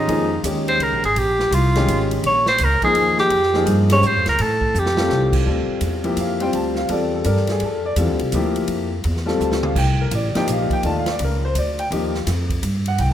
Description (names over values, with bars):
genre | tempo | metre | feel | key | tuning
modal jazz | 167 BPM | 3/4 | swing 65% on 8ths | Bb dorian, D minor from 5.5 s | A4 = 440 Hz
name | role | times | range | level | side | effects
warm tenor saxophone | melody | 0.0-5.4 s | Eb4 to Db5 | -18 LUFS | right 1 dB | none
clear concert grand piano | accompaniment | 0.0-13.1 s | Eb3 to A5 | -22 LUFS | left 2 dB | none
upright bass | bass | 0.0-13.1 s | Ab1 to A2 | -22 LUFS | equal | none
swinging big-band drum kit | drums | 0.1-13.1 s | crash cymbal, hi-hat, kick drum, ride cymbal, snare drum, toms | -28 LUFS | right 2 dB | none
room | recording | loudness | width
light reverb | none | -17 LUFS | side -11 dB against mid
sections
0.0-5.5 A section; 5.5-13.1 A section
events
tenor saxophone solo 0.0-5.5; drum fill 4.7-5.1, 9.4-9.8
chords
0.0 Bbm11; 4.4 Fadd9; 5.5 Dm9; 9.8 Cm9